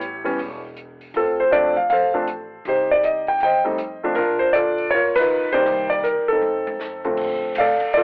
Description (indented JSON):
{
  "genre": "jazz piano trio",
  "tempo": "159 BPM",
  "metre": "4/4",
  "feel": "swing 64% on 8ths",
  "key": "Bb major",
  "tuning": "A4 = 442 Hz",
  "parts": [
    { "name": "warm concert grand piano", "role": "melody", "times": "0.0-8.0 s", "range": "D3 to G5", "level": "-17 LUFS", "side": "equal", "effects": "cassette tape" },
    { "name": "upright bass", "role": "bass", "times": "0.0-8.0 s", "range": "E1 to Bb2", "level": "-41 LUFS", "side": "equal", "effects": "none" },
    { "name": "open jazz drum kit", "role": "drums", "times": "0.0-8.0 s", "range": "crash cymbal, hi-hat, kick drum, ride cymbal, snare drum, toms", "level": "-37 LUFS", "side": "equal", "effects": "cassette tape" }
  ],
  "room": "moderate spring reverb, RT60 1.4 s, small room ambience",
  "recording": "home recording on cassette, telephone sound",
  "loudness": "-17 LUFS",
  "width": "side -36 dB against mid",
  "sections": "0.0-7.2 A section",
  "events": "band accent 5.1; drum fill 6.4-7.2",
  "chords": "0.0 A7; 1.1 Dm7; 2.7 Cm; 3.4 F7; 4.2 Bbmaj7; 4.9 G7alt; 5.7 Cm7; 6.4 F; 7.2 Bbmaj7",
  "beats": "0.01 0.39 0.77 | 1.15 1.53 1.90 2.28 | 2.66 3.04 3.41 3.79 | 4.17 4.54 4.92 5.30 | 5.68 6.05 6.43 6.81 | 7.18 7.56 7.94"
}